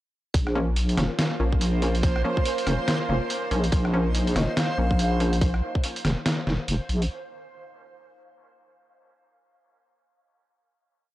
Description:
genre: deep dubstep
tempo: 142 BPM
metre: 4/4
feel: swing 60% on 16ths, half-time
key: Bb minor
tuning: A4 = 442 Hz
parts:
  - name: bowed-like drone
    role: sustained chords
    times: 1.0-5.4 s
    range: Bb3 to C5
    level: -34 LUFS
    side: right 2 dB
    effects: built-in reverb
  - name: deep soft wobble bass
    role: bass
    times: 0.3-7.1 s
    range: F1 to Bb1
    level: -24 LUFS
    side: equal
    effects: chorus
  - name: electronic kick drum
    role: drums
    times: 0.3-5.8 s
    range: none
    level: -24 LUFS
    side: equal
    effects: none
  - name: trip hop sampler-style drum kit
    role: drums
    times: 0.3-7.1 s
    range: hi-hat, rim click, snare drum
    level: -28 LUFS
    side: equal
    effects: none
  - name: backwards swelling texture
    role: texture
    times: 0.3-5.4 s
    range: C5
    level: -34 LUFS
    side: right 2 dB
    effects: built-in reverb
  - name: filtered dub chord stab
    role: stabs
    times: 0.6-5.4 s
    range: F3 to Db4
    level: -31 LUFS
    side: left 1 dB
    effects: chorus, dub echo
  - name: breathy mellow long shakuhachi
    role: melody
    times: 4.4-5.4 s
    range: Eb5 to F5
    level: -34 LUFS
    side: equal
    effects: dub echo
room: light reverb, digital ambience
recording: dry, gritty hardware recording, transformer saturation, cassette tape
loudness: -22 LUFS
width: side -15 dB against mid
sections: 0.3-7.1 drop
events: drop 0.3-7.1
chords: 0.3 Bbm

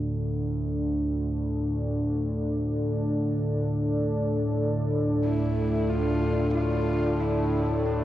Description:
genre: ambient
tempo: free time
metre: none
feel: none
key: D minor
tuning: A4 = 441 Hz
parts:
  - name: dark analog pad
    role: sustained chords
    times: 0.0-8.0 s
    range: D4 to D5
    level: -28 LUFS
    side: equal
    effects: chorus
  - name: analog drone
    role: drone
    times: 0.0-8.0 s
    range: D2 to A2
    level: -27 LUFS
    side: equal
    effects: chorus
  - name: dark horsehead fiddle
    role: melody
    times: 5.2-8.0 s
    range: D4 to F4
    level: -31 LUFS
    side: right 1 dB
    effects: ping-pong delay
room: wet huge ambient reverb, RT60 7.3 s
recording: worn, warbling old tape, cassette tape, warbly pitch drift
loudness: -24 LUFS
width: side -13 dB against mid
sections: 0.0-8.0 A section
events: none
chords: 0.0 D5

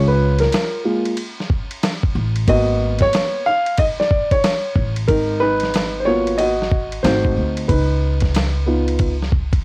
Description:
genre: hip hop, jazz-hop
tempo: 92 BPM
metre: 4/4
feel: swing 63% on 16ths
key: G# dorian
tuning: A4 = 440 Hz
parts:
  - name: dark grand piano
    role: accompaniment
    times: 0.0-9.1 s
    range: G#3 to E#5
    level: -18 LUFS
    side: equal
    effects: cassette tape
  - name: upright bass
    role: bass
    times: 0.0-9.6 s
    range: G#1 to D2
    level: -20 LUFS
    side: equal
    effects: none
  - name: dusty soul sampler-style drum kit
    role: drums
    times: 0.4-9.6 s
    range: hi-hat, kick drum, ride cymbal, snare drum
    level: -21 LUFS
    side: equal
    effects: none
room: light reverb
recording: home recording on cassette, vinyl crackle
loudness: -15 LUFS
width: side -25 dB against mid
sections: 0.0-5.1 A section; 5.1-9.6 B section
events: grand piano solo 0.0-5.1, 5.1-9.6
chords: 0.0 Amaj7b13 (rootless); 2.5 G#m7; 5.1 G#m9; 7.0 G#7b9; 7.7 C#9

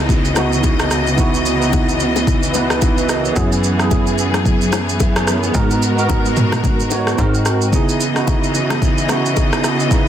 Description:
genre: amapiano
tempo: 110 BPM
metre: 4/4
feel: swing 58% on 16ths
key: C# dorian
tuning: A4 = 442 Hz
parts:
  - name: bell-like tine electric piano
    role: accompaniment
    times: 0.0-10.1 s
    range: C#3 to E5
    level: -19 LUFS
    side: right 4 dB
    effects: ensemble chorus
  - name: rich studio string section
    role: sustained chords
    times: 0.0-10.1 s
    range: C#3 to D#5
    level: -21 LUFS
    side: left 3 dB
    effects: sidechain pumping
  - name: plucky analog bass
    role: bass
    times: 0.0-7.7 s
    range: C#2 to G#2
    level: -21 LUFS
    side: equal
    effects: none
  - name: downlifter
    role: sound effects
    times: 0.0-3.4 s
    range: none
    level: -33 LUFS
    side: equal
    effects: none
  - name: deep house drum kit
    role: drums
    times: 0.1-10.1 s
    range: kick drum, rim click, shaker, toms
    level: -18 LUFS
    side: equal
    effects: soft clipping on snare
  - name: congas and bongos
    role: percussion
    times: 0.1-10.1 s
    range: none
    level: -26 LUFS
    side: left 6 dB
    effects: none
room: digital ambience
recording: dense, heavily limited modern master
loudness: -14 LUFS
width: side -10 dB against mid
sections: 0.0-10.1 A section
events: none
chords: 0.0 C#m9; 3.4 F#9sus4; 5.5 G#m9; 7.2 G#7; 7.7 C#m9

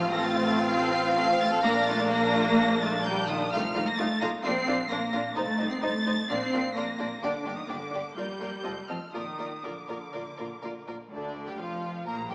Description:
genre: quick classical-period movement for string orchestra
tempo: 128 BPM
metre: 4/4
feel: rubato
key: Bb major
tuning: A4 = 437 Hz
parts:
  - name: rich studio violin section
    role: melody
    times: 0.0-12.3 s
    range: D5 to C7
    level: -36 LUFS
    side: equal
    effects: none
  - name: clear studio violin section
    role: second line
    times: 0.0-12.3 s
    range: A3 to F5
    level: -33 LUFS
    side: equal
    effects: none
  - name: rich studio viola section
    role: accompaniment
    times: 0.0-12.3 s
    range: D3 to F4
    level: -35 LUFS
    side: equal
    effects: none
  - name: rich studio cello section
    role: bass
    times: 0.0-12.3 s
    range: D2 to C4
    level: -33 LUFS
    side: equal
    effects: none
  - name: rich studio double bass section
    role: bass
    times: 0.0-12.3 s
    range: F1 to D2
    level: -42 LUFS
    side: equal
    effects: none
room: wet scoring stage reverb, RT60 1.9 s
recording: small speaker sound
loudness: -28 LUFS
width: mono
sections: 0.0-11.1 A section; 11.1-12.3 B section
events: none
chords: 0.0 F/A; 1.6 Bb; 3.5 F7/C; 4.4 Bb; 5.4 Adim/C; 6.3 Bb; 7.2 Gm; 8.2 Bb/F; 8.7 F5; 9.1 Bb

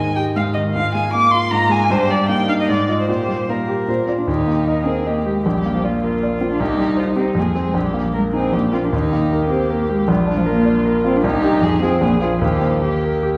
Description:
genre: quick classical-period movement for piano trio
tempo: 155 BPM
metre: 3/4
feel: straight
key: Eb major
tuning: A4 = 437 Hz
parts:
  - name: muted violin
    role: melody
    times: 0.0-13.4 s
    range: Eb4 to D6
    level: -25 LUFS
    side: equal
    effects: none
  - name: muted cello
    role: second line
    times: 0.0-13.4 s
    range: Eb3 to C5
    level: -24 LUFS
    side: equal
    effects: none
  - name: clear concert grand piano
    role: accompaniment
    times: 0.0-13.4 s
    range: Bb1 to Eb5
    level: -21 LUFS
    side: equal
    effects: none
room: wet recital hall reverb, RT60 1.7 s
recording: heard from further back in the room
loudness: -18 LUFS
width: mono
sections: 0.0-4.3 A section; 4.3-13.4 B section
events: none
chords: 0.0 Ab5; 0.8 Bb5/Ab; 1.9 Eb/G; 2.7 Fm7/Ab; 3.1 Eb/Bb (rootless); 3.9 Bb; 4.3 Eb; 5.4 Bb; 6.6 Cm; 7.4 Fm; 7.7 Eb/Bb; 8.5 Bb5; 8.9 Eb; 10.1 Bb; 11.2 Cm; 11.6 Fm; 12.0 Bb5; 12.4 Eb

